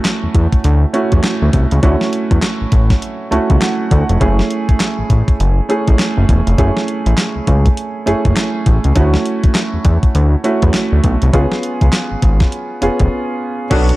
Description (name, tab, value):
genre	R&B, new jack swing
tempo	101 BPM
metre	4/4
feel	swing 61% on 16ths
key	F# minor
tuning	A4 = 442 Hz
part	warm concert grand piano	accompaniment	0.0-14.0 s	A3 to A5	-18 LUFS	right 2 dB	none
part	clean 12-bit digital drum machine	drums	0.0-14.0 s	crash cymbal, handclaps, hi-hat, kick drum, snare drum	-15 LUFS	equal	none
part	fat analog bass	bass	0.2-13.9 s	E1 to E2	-13 LUFS	equal	none
part	mellow horn section	stabs	13.7-13.9 s	A3 to F#4	-19 LUFS	left 3 dB	none
room	digital ambience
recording	dark, warm production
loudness	-12 LUFS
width	side -18 dB against mid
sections	0.0-13.7 A section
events	grand piano fill 3.0-4.2; break 13.1-13.7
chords	0.0 Dmaj7; 4.2 F#m7; 9.0 Dmaj7; 11.3 C#7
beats	0.05 0.64 1.24 | 1.83 2.42 3.02 3.61 | 4.21 4.80 5.39 5.99 | 6.58 7.18 7.77 8.37 | 8.96 9.55 10.15 10.74 | 11.34 11.93 12.52 13.12 | 13.71